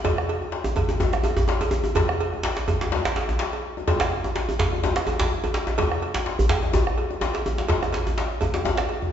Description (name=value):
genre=west african traditional, West African drum ensemble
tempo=126 BPM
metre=4/4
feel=swing 55% on 16ths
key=none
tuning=none
part: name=cowbell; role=percussion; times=0.0-9.0 s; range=none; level=-31 LUFS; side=right 4 dB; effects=none
part: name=djembe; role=percussion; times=0.0-9.1 s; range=none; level=-28 LUFS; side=left 4 dB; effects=none
part: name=bombo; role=percussion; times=0.1-9.1 s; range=none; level=-28 LUFS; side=right 2 dB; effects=none
part: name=djembe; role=percussion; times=0.6-8.9 s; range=none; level=-25 LUFS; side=equal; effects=none
room=wet recital hall reverb, RT60 1.5 s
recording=recorded in a church or concert hall, nothing above 7.8 kHz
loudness=-22 LUFS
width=side -9 dB against mid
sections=0.0-9.1 A section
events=drum fill 5.3-5.8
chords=none